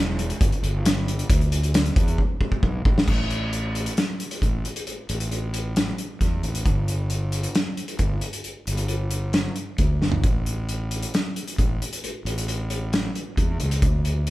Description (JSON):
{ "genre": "quiet-loud alternative rock", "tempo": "134 BPM", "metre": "4/4", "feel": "straight", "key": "unclear", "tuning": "A4 = 440 Hz", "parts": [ { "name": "fuzz fingered electric bass", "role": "bass", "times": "0.0-14.3 s", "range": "E1 to E2", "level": "-26 LUFS", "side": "equal", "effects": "overdrive" }, { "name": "loose indie drum kit", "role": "drums", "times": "0.2-14.3 s", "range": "crash cymbal, hi-hat, kick drum, snare drum, toms", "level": "-23 LUFS", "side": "equal", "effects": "none" } ], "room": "moderate large studio reverb, RT60 1.3 s", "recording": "band playing live in one room", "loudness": "-22 LUFS", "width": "side -17 dB against mid", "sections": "0.0-3.1 A section; 3.1-14.3 B section", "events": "drum fill 2.2-3.1, 10.0; half time 3.1-14.3", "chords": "none" }